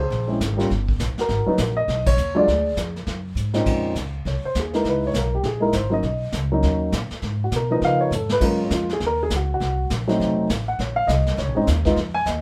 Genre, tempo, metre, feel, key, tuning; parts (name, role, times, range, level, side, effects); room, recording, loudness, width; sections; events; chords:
jazz piano trio; 202 BPM; 4/4; swing 62% on 8ths; Bb minor from 3.7 s; A4 = 441 Hz
dark upright piano; melody; 0.0-12.4 s; Bb2 to Ab5; -24 LUFS; equal
upright bass; bass; 0.0-12.4 s; F1 to Db3; -27 LUFS; equal
vintage brush drum kit; drums; 0.1-12.4 s; brushed snare drum, crash cymbal, hi-hat, kick drum, snare drum, toms; -30 LUFS; equal
light reverb; -22 LUFS; mono
0.0-3.7 A section; 3.7-12.4 B section
band accent 2.0; drum fill 3.4, 8.1; upright piano solo 3.7-12.4
0.1 Bbm7; 0.7 Gm; 1.3 Abm9; 2.5 Bb7b13 (rootless); 3.7 Bbm11; 4.8 Dbm7; 5.4 Gb69 (rootless); 6.0 Bmaj9; 7.2 Abm; 7.8 Db13; 8.4 Gbmaj7; 9.6 C7(b5, no3); 10.2 F7b9; 10.8 Bbmadd9